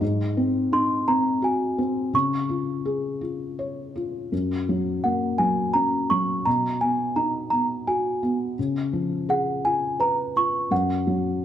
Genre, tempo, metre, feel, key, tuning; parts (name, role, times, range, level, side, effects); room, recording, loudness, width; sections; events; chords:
children's music, lullaby; 84 BPM; 3/4; rubato; A4 = 440 Hz
felt-muted upright piano; accompaniment; 0.0-11.4 s; F#2 to C#5; -24 LUFS; left 1 dB
small celesta; melody; 0.7-11.4 s; F#5 to C#6; -24 LUFS; right 1 dB
moderate recital hall reverb, RT60 1.4 s; dark, warm production; -22 LUFS; side -10 dB against mid
0.0-11.4 A section
0.0 G#7; 2.1 C#; 4.3 F#; 6.5 B; 8.6 C#7; 10.7 N.C.